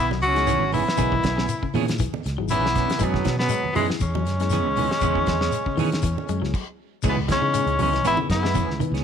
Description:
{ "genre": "afrobeat", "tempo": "119 BPM", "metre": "4/4", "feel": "swing 53% on 16ths", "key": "C# minor", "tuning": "A4 = 441 Hz", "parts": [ { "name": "clear tenor saxophone", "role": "melody", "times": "0.0-8.8 s", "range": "G#3 to F#4", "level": "-24 LUFS", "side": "left 4 dB", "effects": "slapback echo" }, { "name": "bright trombone", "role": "second line", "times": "0.0-8.8 s", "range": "E3 to C#4", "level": "-31 LUFS", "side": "right 13 dB", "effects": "none" }, { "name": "growling baritone saxophone", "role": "second line", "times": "0.0-8.8 s", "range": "G#2 to F#3", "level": "-34 LUFS", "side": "right 11 dB", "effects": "none" }, { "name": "electric guitar at the edge of break-up", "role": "arpeggios", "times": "0.0-9.0 s", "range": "C#3 to G#3", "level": "-32 LUFS", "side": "left 11 dB", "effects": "none" }, { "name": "fingered electric bass", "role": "bass", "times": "0.0-9.0 s", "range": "G#1 to D#3", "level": "-26 LUFS", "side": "equal", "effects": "none" }, { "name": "semi-hollow electric guitar", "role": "stabs", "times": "0.1-9.0 s", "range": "E3 to G#4", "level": "-31 LUFS", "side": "right 12 dB", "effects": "tremolo" }, { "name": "damped 70s drum kit", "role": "drums", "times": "0.1-9.0 s", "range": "crash cymbal, hi-hat, kick drum, snare drum", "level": "-29 LUFS", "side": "equal", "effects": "none" }, { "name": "congas", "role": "percussion", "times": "0.1-8.9 s", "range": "none", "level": "-32 LUFS", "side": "right 8 dB", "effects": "none" }, { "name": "shekere", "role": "percussion", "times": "0.2-8.9 s", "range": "none", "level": "-32 LUFS", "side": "left 6 dB", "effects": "none" }, { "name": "mellow reed electric piano", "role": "accompaniment", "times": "0.3-9.0 s", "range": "B3 to D#5", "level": "-35 LUFS", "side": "left 12 dB", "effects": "none" } ], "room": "light reverb, small room ambience", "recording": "1960s-style stereo with parts hard left and right", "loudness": "-20 LUFS", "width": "side -8 dB against mid", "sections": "0.0-7.0 A section; 7.0-9.0 B section", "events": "stop 6.5-7.0", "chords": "0.0 C#m7; 3.0 F#9sus4; 7.0 C#m7" }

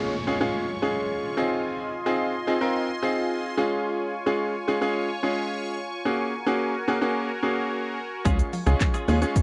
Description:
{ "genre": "dance-pop", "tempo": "109 BPM", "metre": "4/4", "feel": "straight", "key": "Db major", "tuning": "A4 = 444 Hz", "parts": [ { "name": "bright grand piano", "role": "accompaniment", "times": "0.0-9.4 s", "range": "Ab3 to Bb4", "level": "-28 LUFS", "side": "equal", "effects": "sidechain pumping" }, { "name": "sweeping resonant pad", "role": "sustained chords", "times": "0.0-9.4 s", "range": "F4 to Db6", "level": "-34 LUFS", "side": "equal", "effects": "chorus, sidechain pumping" }, { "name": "downlifter", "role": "sound effects", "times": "0.0-3.9 s", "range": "none", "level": "-39 LUFS", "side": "equal", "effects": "none" }, { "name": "direct-recorded clean electric guitar", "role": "riff", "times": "8.2-9.4 s", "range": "Ab3 to Ab4", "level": "-34 LUFS", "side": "equal", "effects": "ensemble chorus" }, { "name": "mallet-like synth pluck", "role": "arpeggios", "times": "8.3-9.3 s", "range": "F3 to Db6", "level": "-38 LUFS", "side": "equal", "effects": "none" }, { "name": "plucky analog bass", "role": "bass", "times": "8.3-9.2 s", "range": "Db2 to Eb2", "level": "-23 LUFS", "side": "equal", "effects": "sidechain pumping" }, { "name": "punchy analog drum machine", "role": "drums", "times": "8.3-9.4 s", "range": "handclaps, hi-hat, kick drum, shaker, snare drum", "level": "-26 LUFS", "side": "equal", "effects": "none" } ], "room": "little or no reverb", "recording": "dry, close 1970s-style studio recording", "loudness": "-26 LUFS", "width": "mono", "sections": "0.0-9.4 A section", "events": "none", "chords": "0.0 Db; 1.4 Fm7; 3.6 Db; 6.1 Gbadd9; 8.3 Db" }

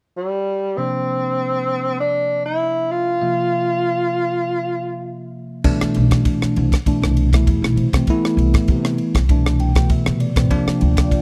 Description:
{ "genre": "electric jazz fusion", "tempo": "99 BPM", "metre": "4/4", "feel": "straight", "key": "C mixolydian, C major from 5.7 s", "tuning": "A4 = 436 Hz", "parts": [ { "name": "mellow tenor saxophone", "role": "melody", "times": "0.2-5.3 s", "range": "G3 to F4", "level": "-22 LUFS", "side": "equal", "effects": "slapback echo" }, { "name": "bell-like tine electric piano", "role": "accompaniment", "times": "0.8-11.2 s", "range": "B2 to G5", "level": "-24 LUFS", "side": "equal", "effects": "phaser" }, { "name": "upright bass", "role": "bass", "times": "5.6-11.1 s", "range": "B1 to C3", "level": "-21 LUFS", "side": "equal", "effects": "none" }, { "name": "tight funk drum kit", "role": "drums", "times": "5.6-11.2 s", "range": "crash cymbal, kick drum, ride cymbal, rim click", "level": "-21 LUFS", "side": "equal", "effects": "none" }, { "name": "warbly tape-like pad", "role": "sustained chords", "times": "10.8-11.2 s", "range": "F4 to G5", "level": "-31 LUFS", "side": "equal", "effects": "chorus, built-in reverb, phaser" } ], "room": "small room ambience", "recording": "dry, close 1970s-style studio recording", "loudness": "-18 LUFS", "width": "mono", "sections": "0.8-5.7 A section; 5.7-11.2 B section", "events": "tine electric piano fill 9.3-10.5", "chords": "0.0 N.C.; 0.8 C9sus4; 5.7 Cmaj9; 10.5 Ebmaj9" }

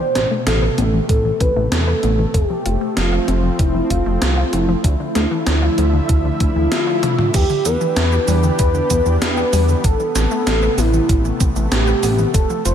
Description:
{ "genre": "synthwave", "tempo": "96 BPM", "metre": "4/4", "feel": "straight", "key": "unclear", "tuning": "A4 = 440 Hz", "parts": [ { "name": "warm velvety synth lead", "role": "melody", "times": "0.0-12.7 s", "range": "E4 to C5", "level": "-20 LUFS", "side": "right 1 dB", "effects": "chorus, digital delay" }, { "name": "lush unison pad", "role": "sustained chords", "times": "0.0-12.7 s", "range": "B2 to E5", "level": "-24 LUFS", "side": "left 1 dB", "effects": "chorus, sidechain pumping" }, { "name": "wide unison pluck", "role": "arpeggios", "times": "0.0-12.7 s", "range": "D3 to F5", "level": "-26 LUFS", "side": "left 4 dB", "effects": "ping-pong delay" }, { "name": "chorused synth bass", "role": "bass", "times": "0.2-12.7 s", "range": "F1 to E2", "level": "-18 LUFS", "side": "equal", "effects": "sidechain pumping" }, { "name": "gated 80s digital drum machine", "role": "drums", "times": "0.2-12.7 s", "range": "crash cymbal, hi-hat, shaker, snare drum, toms", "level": "-23 LUFS", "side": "right 1 dB", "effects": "gated reverb, gated reverb snare" }, { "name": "electronic kick drum", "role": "drums", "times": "1.1-12.5 s", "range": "none", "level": "-18 LUFS", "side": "equal", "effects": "none" }, { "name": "swell", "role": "sound effects", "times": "6.3-7.3 s", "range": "none", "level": "-28 LUFS", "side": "left 2 dB", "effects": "none" } ], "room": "light reverb", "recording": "none", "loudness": "-14 LUFS", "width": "side -9 dB against mid", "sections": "0.0-7.3 A section; 7.3-12.7 B section", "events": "filter sweep on synth arpeggio sound 0.0-7.3; swell 6.3-7.3; drum fill 7.0-7.3", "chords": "0.0 Amadd9; 2.3 F; 4.8 Dmadd9; 7.3 Em7; 9.8 Amadd9" }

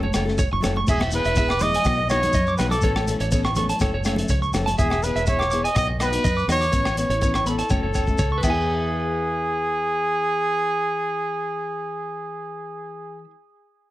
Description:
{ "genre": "highlife guitar band", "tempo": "123 BPM", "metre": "4/4", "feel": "straight", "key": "E major", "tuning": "A4 = 436 Hz", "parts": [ { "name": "nylon-string guitar", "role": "accompaniment", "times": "0.0-13.3 s", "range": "E3 to A4", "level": "-29 LUFS", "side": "left 4 dB", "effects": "none" }, { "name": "electric guitar at the edge of break-up", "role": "arpeggios", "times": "0.0-13.3 s", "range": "B4 to D6", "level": "-27 LUFS", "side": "right 4 dB", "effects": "tape echo" }, { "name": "fingered electric bass", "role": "bass", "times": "0.0-13.2 s", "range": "E1 to F#2", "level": "-26 LUFS", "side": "equal", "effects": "none" }, { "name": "congas", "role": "percussion", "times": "0.0-4.8 s", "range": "none", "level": "-30 LUFS", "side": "right 2 dB", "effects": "none" }, { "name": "crunchy breakbeat drum kit", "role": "drums", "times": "0.1-8.6 s", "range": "crash cymbal, hi-hat, kick drum, rim click", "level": "-26 LUFS", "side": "equal", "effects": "none" }, { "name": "agogo bells", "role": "percussion", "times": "0.1-8.8 s", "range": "none", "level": "-35 LUFS", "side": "left 5 dB", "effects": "none" }, { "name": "shekere", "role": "percussion", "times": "0.1-8.9 s", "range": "none", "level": "-31 LUFS", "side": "left 1 dB", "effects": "none" }, { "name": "warm trumpet", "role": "melody", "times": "0.9-13.2 s", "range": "G#4 to D#5", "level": "-24 LUFS", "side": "equal", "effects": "tape echo" } ], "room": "light reverb", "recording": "none", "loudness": "-20 LUFS", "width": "side -15 dB against mid", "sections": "0.9-8.7 A section; 8.7-12.6 B section", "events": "drum fill 7.7-8.7", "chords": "0.0 F#m; 0.9 E; 1.9 B; 2.8 Aadd9; 3.8 F#m; 4.8 E; 5.8 B; 6.7 Aadd9; 7.7 F#m; 8.4 E" }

